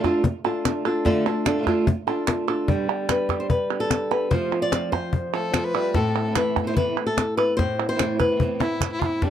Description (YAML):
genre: flamenco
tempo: 147 BPM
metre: 4/4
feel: straight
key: A minor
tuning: A4 = 440 Hz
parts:
  - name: flamenco guitar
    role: melody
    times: 0.0-9.3 s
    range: A2 to D5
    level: -24 LUFS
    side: left 1 dB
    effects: none
  - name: flamenco guitar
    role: stabs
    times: 0.0-9.3 s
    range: F2 to G4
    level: -29 LUFS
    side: right 7 dB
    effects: slapback echo
  - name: cajon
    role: percussion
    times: 0.0-9.3 s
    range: none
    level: -24 LUFS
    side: left 3 dB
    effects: none
  - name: palmas hand claps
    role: percussion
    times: 0.0-9.2 s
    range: none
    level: -27 LUFS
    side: right 20 dB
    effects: none
  - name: rich violin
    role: second line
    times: 5.3-9.3 s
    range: D4 to B4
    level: -28 LUFS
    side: left 2 dB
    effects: none
room: light reverb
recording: dry, close 1970s-style studio recording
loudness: -20 LUFS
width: side -10 dB against mid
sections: 0.0-2.7 A section; 2.7-9.3 B section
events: drum fill 8.6-9.2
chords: 0.0 Dm; 2.7 G; 4.3 F; 6.0 Amadd9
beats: 0.24 0.64 | 1.05 1.46 1.87 2.27 | 2.68 3.09 3.50 3.91 | 4.32 4.73 5.13 5.54 | 5.95 6.36 6.77 7.18 | 7.59 8.00 8.41 8.82 | 9.23